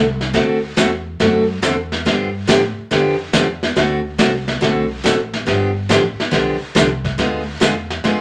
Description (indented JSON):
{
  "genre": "country, western swing",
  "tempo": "140 BPM",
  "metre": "4/4",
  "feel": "swing 67% on 8ths",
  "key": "unclear",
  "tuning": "A4 = 443 Hz",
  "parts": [
    { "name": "picked steel-string acoustic guitar", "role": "accompaniment", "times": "0.0-8.2 s", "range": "D3 to A4", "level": "-19 LUFS", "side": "equal", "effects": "none" },
    { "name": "upright bass", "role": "bass", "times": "0.0-8.2 s", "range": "G1 to A2", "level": "-28 LUFS", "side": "equal", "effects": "none" },
    { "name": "vintage brush drum kit", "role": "drums", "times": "0.2-8.2 s", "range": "brushed snare drum, hi-hat, kick drum, snare drum", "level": "-21 LUFS", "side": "equal", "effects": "none" }
  ],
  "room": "moderate studio ambience, RT60 0.5 s",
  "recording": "none",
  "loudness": "-17 LUFS",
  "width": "mono",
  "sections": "0.0-8.2 A section",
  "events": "none",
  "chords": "0.0 D9; 2.1 G9; 3.8 D7; 5.5 G9; 7.2 G#dim7"
}